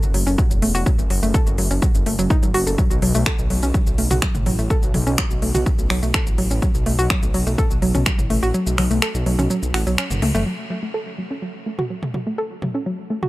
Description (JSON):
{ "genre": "melodic techno", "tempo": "125 BPM", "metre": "4/4", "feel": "straight", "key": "F# minor", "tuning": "A4 = 441 Hz", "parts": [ { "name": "dark detuned saw bass", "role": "bass", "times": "0.0-10.4 s", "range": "E1 to C#2", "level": "-21 LUFS", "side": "equal", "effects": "sidechain pumping" }, { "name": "deep house drum kit", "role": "drums", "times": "0.0-13.3 s", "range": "finger snaps, hi-hat, shaker, toms", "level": "-25 LUFS", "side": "equal", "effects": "none" }, { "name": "woody wave-folded pluck", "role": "arpeggios", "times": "0.1-13.3 s", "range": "F#3 to A4", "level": "-23 LUFS", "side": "equal", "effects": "chorus, cassette tape, sidechain pumping, tape echo" }, { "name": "electronic kick drum", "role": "drums", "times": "0.4-8.2 s", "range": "none", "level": "-20 LUFS", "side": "equal", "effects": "none" } ], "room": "little or no reverb", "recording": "none", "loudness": "-17 LUFS", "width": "side -18 dB against mid", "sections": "0.0-10.5 A section; 10.5-13.3 B section", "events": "kick drops out 8.5-10.5; band accent 10.0; drum fill 10.2; filter sweep on synth pluck 10.5-13.3", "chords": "0.0 F#m7; 2.8 B5; 10.5 F#m" }